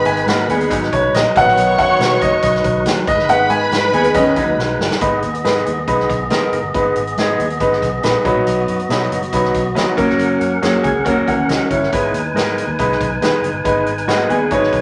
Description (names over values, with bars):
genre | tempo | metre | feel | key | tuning
uptempo 1960s-style soul | 139 BPM | 4/4 | straight | G# minor | A4 = 439 Hz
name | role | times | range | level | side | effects
warm symphonic violin section | second line | 0.0-4.8 s | B4 to C#6 | -22 LUFS | equal | none
clear baby grand piano | accompaniment | 0.0-14.8 s | D#3 to G#5 | -18 LUFS | equal | none
tonewheel organ | sustained chords | 0.0-14.8 s | F#3 to G#5 | -24 LUFS | equal | slow rotary speaker
vintage muted fingered electric bass | bass | 0.1-14.8 s | E#1 to B2 | -28 LUFS | equal | none
swinging big-band drum kit | drums | 0.1-14.8 s | hi-hat, kick drum, snare drum | -25 LUFS | equal | none
vintage hollow-body jazz guitar | riff | 0.3-1.3, 3.9-5.0, 10.8-14.8 s | E3 to G#4 | -22 LUFS | equal | none
room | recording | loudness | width
wet club reverb, RT60 0.5 s | none | -16 LUFS | mono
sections
0.0-5.0 A section; 5.0-14.8 B section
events
grand piano solo 0.0-5.0; drum fill 4.6-5.0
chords
0.0 G#m; 1.4 B; 3.1 G#m; 8.3 B; 10.0 F#; 11.9 G#m